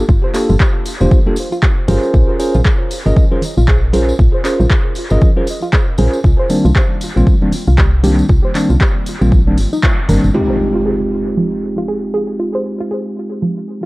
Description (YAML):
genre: deep house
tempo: 117 BPM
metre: 4/4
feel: swing 59% on 16ths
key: F minor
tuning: A4 = 441 Hz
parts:
  - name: tine electric piano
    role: stabs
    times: 0.0-13.9 s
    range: Eb3 to Eb5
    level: -18 LUFS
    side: equal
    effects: sidechain pumping, low-pass filter, analog delay
  - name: woody FM bass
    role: bass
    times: 0.0-10.3 s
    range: F1 to C2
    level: -13 LUFS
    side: equal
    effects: sidechain pumping
  - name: soft round pluck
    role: arpeggios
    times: 0.1-13.9 s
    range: F3 to C5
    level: -22 LUFS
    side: right 1 dB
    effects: chorus, sidechain pumping, analog delay
  - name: electronic kick drum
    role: drums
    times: 0.1-10.0 s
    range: none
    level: -12 LUFS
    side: equal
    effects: overdrive
  - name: tambourine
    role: percussion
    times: 0.1-10.3 s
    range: none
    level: -34 LUFS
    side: left 1 dB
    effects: none
  - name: punchy analog drum machine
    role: drums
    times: 0.3-10.2 s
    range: handclaps, hi-hat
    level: -23 LUFS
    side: equal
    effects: dub echo
  - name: congas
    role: percussion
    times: 0.5-10.2 s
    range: none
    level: -23 LUFS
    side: right 1 dB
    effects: none
  - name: impact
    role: sound effects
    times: 10.3-12.4 s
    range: none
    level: -24 LUFS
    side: equal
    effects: none
room: light reverb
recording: echo-heavy mix, cassette tape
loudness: -11 LUFS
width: side -21 dB against mid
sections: 0.0-10.3 A section; 10.3-13.9 B section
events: band accent 9.8; impact 10.3-12.4; filter sweep on tine electric piano 10.3-13.9; filter sweep on synth arpeggio sound 10.3-13.9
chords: 0.0 Gm9; 2.1 Bbm9; 6.2 Cm9; 10.3 Fm9